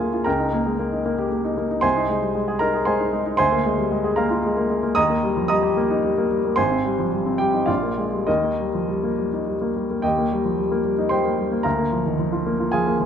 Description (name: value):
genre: classical, virtuoso piano study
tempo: 97-118 BPM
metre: 3/4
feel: rubato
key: Eb major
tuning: A4 = 440 Hz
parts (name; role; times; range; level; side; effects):
- clear baby grand piano; solo; 0.0-13.1 s; Ab1 to Eb6; -19 LUFS; equal; none
room: moderate recital hall reverb, RT60 1.6 s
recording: dark, warm production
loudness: -19 LUFS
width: side -8 dB against mid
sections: 0.0-10.0 A section; 10.0-13.1 A section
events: none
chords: 0.3 Eb7/Db; 1.8 Ab/C; 3.4 Bb7/D; 5.0 Eb; 6.6 Abmaj7; 7.7 Bb7; 8.3 Eb; 11.6 Bb/D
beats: | 0.27 0.80 1.32 | 1.84 2.35 2.87 | 3.39 3.92 4.44 | 4.96 5.50 6.04 | 6.57 7.12 7.68 | 8.28 8.89 9.47 | 10.04 10.58 11.11 | 11.65 12.19 12.73